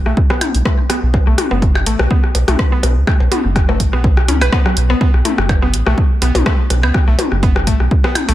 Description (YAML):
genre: minimal techno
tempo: 124 BPM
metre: 4/4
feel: swing 54% on 16ths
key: unclear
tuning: A4 = 440 Hz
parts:
  - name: round analog bass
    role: bass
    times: 0.0-8.3 s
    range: F#1 to C#2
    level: -15 LUFS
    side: equal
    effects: sidechain pumping
  - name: mallet-like synth pluck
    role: riff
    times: 0.1-8.3 s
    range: F#3 to B4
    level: -22 LUFS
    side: equal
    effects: chorus, sidechain pumping, analog delay
  - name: minimal click drum kit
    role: percussion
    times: 0.1-8.3 s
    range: percussion blips, rim click, toms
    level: -20 LUFS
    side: left 2 dB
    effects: analog delay
  - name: electronic kick drum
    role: drums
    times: 0.2-8.0 s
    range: none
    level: -14 LUFS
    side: equal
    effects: none
  - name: punchy analog drum machine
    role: drums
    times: 0.4-8.3 s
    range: hi-hat, rim click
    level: -23 LUFS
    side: right 2 dB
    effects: none
room: light reverb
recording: none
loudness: -12 LUFS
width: side -14 dB against mid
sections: 0.0-8.3 A section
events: filter sweep on synth arpeggio sound 0.0-8.3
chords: 0.0 B5